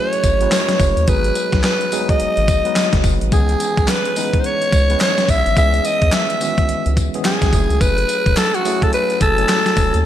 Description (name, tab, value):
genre	R&B, new jack swing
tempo	107 BPM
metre	4/4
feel	swing 61% on 16ths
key	C# minor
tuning	A4 = 440 Hz
part	growling alto saxophone	melody	0.0-10.1 s	F#4 to E5	-18 LUFS	equal	none
part	mellow tine electric piano	accompaniment	0.0-10.1 s	D#3 to A5	-23 LUFS	equal	medium stereo tremolo
part	crisp 8-bit digital drum machine	drums	0.1-10.0 s	handclaps, hi-hat, kick drum, snare drum, tambourine	-18 LUFS	equal	overdrive, vintage 12-bit sampler grit, gated reverb
part	round analog bass	bass	0.2-10.0 s	E1 to E2	-19 LUFS	equal	none
part	group handclap	percussion	3.9-9.6 s	none	-34 LUFS	right 6 dB	none
room	light reverb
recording	bright 1980s-style digital production, lossy compression artefacts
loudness	-14 LUFS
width	side -11 dB against mid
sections	0.0-10.1 A section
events	none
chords	0.0 F#m9; 1.1 G#m7; 3.3 C#m7; 7.5 F#m9